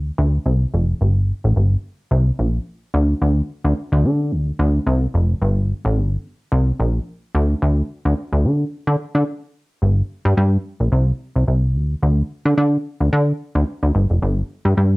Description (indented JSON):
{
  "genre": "funk",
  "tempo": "109 BPM",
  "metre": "4/4",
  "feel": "swing 56% on 16ths",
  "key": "unclear",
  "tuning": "A4 = 439 Hz",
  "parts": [
    { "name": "plucky analog bass", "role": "solo", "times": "0.0-15.0 s", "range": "F1 to D3", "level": "-16 LUFS", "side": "equal", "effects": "none" }
  ],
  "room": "moderate studio reverb, RT60 0.6 s",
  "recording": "home recording on cassette",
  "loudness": "-17 LUFS",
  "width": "side -24 dB against mid",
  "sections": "0.0-9.8 A section; 9.8-15.0 B section",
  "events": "break 9.3-9.8",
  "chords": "none",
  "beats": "0.46 | 1.01 1.56 2.11 2.66 | 3.21 3.77 4.32 4.87 | 5.42 5.97 6.52 7.07 | 7.62 8.17 8.72 9.27 | 9.82 10.37 10.92 11.47 | 12.02 12.57 13.12 13.67 | 14.22 14.77"
}